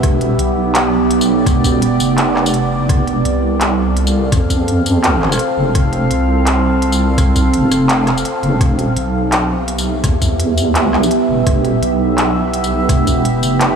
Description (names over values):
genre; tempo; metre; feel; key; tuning
half-time drum and bass; 168 BPM; 4/4; swing 58% on 16ths, half-time; E phrygian; A4 = 440 Hz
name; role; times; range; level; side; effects
deep dark ambient pad; sustained chords; 0.0-13.8 s; B3 to F5; -16 LUFS; right 2 dB; chorus, built-in reverb, vintage 12-bit sampler grit, sidechain pumping
deep soft wobble bass; bass; 0.0-13.8 s; E1 to F2; -17 LUFS; equal; chorus, tube saturation
electronic kick drum; drums; 0.0-13.2 s; none; -15 LUFS; equal; none
organic electronic drum kit; drums; 0.0-13.7 s; handclaps, hi-hat, rim click, tambourine; -20 LUFS; equal; overdrive
room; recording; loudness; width
wet huge ambient reverb, RT60 5.2 s; dreamy mix soaked in reverb, studio reverb; -12 LUFS; side -6 dB against mid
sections
0.0-13.8 A section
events
none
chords
0.0 Em; 2.9 F; 8.6 Em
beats
| 0.04 0.39 0.75 1.11 | 1.47 1.82 2.18 2.54 | 2.89 3.25 3.61 3.97 | 4.32 4.68 5.04 5.39 | 5.75 6.11 6.47 6.82 | 7.18 7.54 7.89 8.25 | 8.61 8.97 9.32 9.68 | 10.04 10.39 10.75 11.11 | 11.47 11.82 12.18 12.54 | 12.89 13.25 13.61